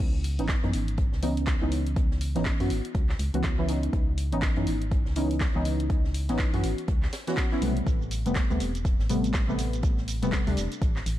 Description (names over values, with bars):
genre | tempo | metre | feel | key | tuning
deep house | 122 BPM | 4/4 | swing 60% on 16ths | unclear | A4 = 440 Hz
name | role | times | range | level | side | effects
deep mellow chord stab | stabs | 0.0-10.6 s | B#2 to F#4 | -30 LUFS | equal | chorus, sidechain pumping, tape echo
organ-like FM bass | bass | 0.0-11.2 s | E1 to F#2 | -29 LUFS | equal | sidechain pumping
deep house drum kit | drums | 0.0-11.2 s | crash cymbal, handclaps, hi-hat, shaker | -37 LUFS | equal | none
electronic kick drum | drums | 0.0-10.9 s | none | -26 LUFS | equal | overdrive
open jazz drum kit | drums | 0.0-11.2 s | hi-hat, snare drum | -45 LUFS | right 2 dB | high-pass filter on hats, high-pass filter on snare, high-pass filter on room
room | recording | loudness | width
little or no reverb | none | -24 LUFS | side -13 dB against mid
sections
0.0-11.2 A section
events
none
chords
0.0 C#m9; 7.9 Am9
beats
| 0.00 0.49 0.98 1.47 | 1.96 2.46 2.95 3.44 | 3.93 4.42 4.92 5.41 | 5.90 6.39 6.88 7.37 | 7.87 8.36 8.85 9.34 | 9.83 10.32 10.82